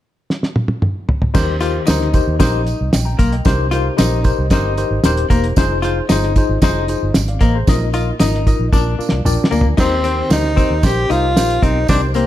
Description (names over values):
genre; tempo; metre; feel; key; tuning
uptempo 1960s-style soul; 114 BPM; 4/4; straight; Eb major; A4 = 440 Hz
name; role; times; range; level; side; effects
cloth-damped thuddy drum kit; drums; 0.3-12.3 s; crash cymbal, hi-hat, kick drum, snare drum, toms; -16 LUFS; equal; none
tine electric piano; accompaniment; 1.3-12.3 s; Bb2 to C6; -21 LUFS; left 3 dB; overdrive, fast stereo tremolo
tambourine; percussion; 1.3-12.3 s; none; -32 LUFS; right 10 dB; none
vintage muted fingered electric bass; bass; 1.4-12.3 s; Eb1 to Eb2; -19 LUFS; equal; none
archtop guitar, miked and amplified; riff; 1.6-12.3 s; Bb3 to F4; -22 LUFS; left 5 dB; none
breathy tenor saxophone; melody; 9.8-12.3 s; C4 to G4; -18 LUFS; equal; none
room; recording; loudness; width
moderate large studio reverb, RT60 1.3 s, studio ambience; dark, warm production; -13 LUFS; side -13 dB against mid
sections
0.0-1.3 A section; 1.3-9.8 B section; 9.8-12.3 C section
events
drum fill 0.3-1.3, 8.7-9.8; tine electric piano fill 8.7-9.8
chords
0.0 N.C.; 1.3 Eb6; 3.5 Cm7; 5.6 Fm7; 7.7 Bbsus4; 8.7 Bb; 9.8 Eb6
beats
0.29 0.82 | 1.35 1.88 2.40 2.93 | 3.46 3.99 4.51 5.04 | 5.57 6.10 6.62 7.15 | 7.68 8.21 8.73 9.26 | 9.79 10.31 10.84 11.36 | 11.89